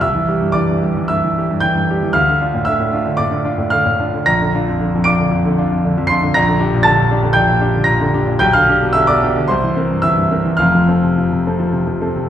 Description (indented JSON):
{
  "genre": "classical, romantic character piece for solo piano",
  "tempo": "113 BPM",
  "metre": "4/4",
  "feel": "uneven beats, rubato",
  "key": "unclear",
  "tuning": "A4 = 440 Hz",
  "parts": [
    { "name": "warm grand piano", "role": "solo", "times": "0.0-12.3 s", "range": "F1 to D7", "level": "-13 LUFS", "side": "equal", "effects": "none" }
  ],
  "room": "wet recital hall reverb, RT60 1.3 s",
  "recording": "recorded in a church or concert hall",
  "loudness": "-13 LUFS",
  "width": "side -10 dB against mid",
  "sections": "0.0-12.3 A section",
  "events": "none",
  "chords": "0.0 C; 2.2 Dm; 4.3 Bb; 6.4 Gm/Bb; 8.4 G7/B; 9.5 C7; 10.6 F"
}